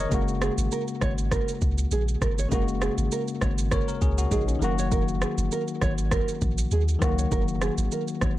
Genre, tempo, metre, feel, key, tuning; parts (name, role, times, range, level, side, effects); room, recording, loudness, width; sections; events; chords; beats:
afrobeats; 100 BPM; 4/4; swing 55% on 16ths; F# major; A4 = 440 Hz
bell-like tine electric piano; accompaniment; 0.0-8.4 s; C#3 to D#5; -29 LUFS; left 5 dB
nylon-string guitar; riff; 0.0-8.3 s; G#4 to C#5; -32 LUFS; right 7 dB; analog delay
punchy sub bass; bass; 0.0-8.4 s; F#1 to D#2; -26 LUFS; equal
afro-pop drum kit; drums; 0.1-8.4 s; kick drum, rim click, shaker; -28 LUFS; equal
little or no reverb; echo-heavy mix, lossy compression artefacts; -23 LUFS; side -15 dB against mid
0.0-8.4 A section
0.1 F#add9
| 0.12 0.72 1.32 1.92 | 2.52 3.12 3.72 4.32 | 4.92 5.52 6.12 6.72 | 7.32 7.92